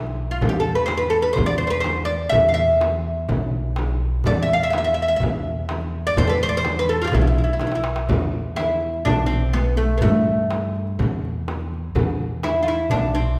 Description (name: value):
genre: Arabic maqam ensemble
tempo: 125 BPM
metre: 4/4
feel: straight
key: E maqam kurd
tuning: A4 = 438 Hz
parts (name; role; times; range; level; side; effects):
- upright bass; bass; 0.0-13.4 s; B1 to G2; -27 LUFS; equal; none
- darbuka; percussion; 0.1-13.2 s; none; -31 LUFS; equal; none
- oud; melody; 0.3-13.4 s; A3 to F5; -23 LUFS; equal; none
- frame drum; percussion; 0.4-13.0 s; none; -29 LUFS; equal; none
room: wet recital hall reverb, RT60 1.6 s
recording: recorded in a church or concert hall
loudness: -21 LUFS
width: mono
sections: 0.0-8.1 A section; 8.1-13.4 B section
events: drum fill 7.6-8.1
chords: none